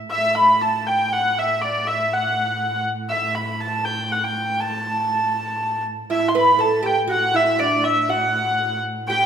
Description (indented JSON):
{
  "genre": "medieval",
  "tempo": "120 BPM",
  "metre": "3/4",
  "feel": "straight",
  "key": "unclear",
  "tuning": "A4 = 440 Hz",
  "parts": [
    { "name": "dark viola da gamba", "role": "drone", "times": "0.0-9.3 s", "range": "A2", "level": "-32 LUFS", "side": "right 1 dB", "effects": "none" },
    { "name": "warm hurdy-gurdy", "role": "melody", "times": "0.1-9.3 s", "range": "D5 to C6", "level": "-19 LUFS", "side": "equal", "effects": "none" },
    { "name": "oud", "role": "second line", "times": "6.1-9.3 s", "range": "D4 to B4", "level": "-22 LUFS", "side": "right 5 dB", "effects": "none" }
  ],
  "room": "wet recital hall reverb, RT60 1.8 s",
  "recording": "minimal, uncompressed stereo recording",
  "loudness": "-18 LUFS",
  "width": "side -8 dB against mid",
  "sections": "0.0-6.1 A section; 6.1-9.3 A section",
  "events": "none",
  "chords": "none",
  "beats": "| 0.10 0.60 1.10 | 1.60 2.10 2.60 | 3.10 3.60 4.10 | 4.59 5.09 5.59 | 6.09 6.59 7.09 | 7.59 8.09 8.58 | 9.08"
}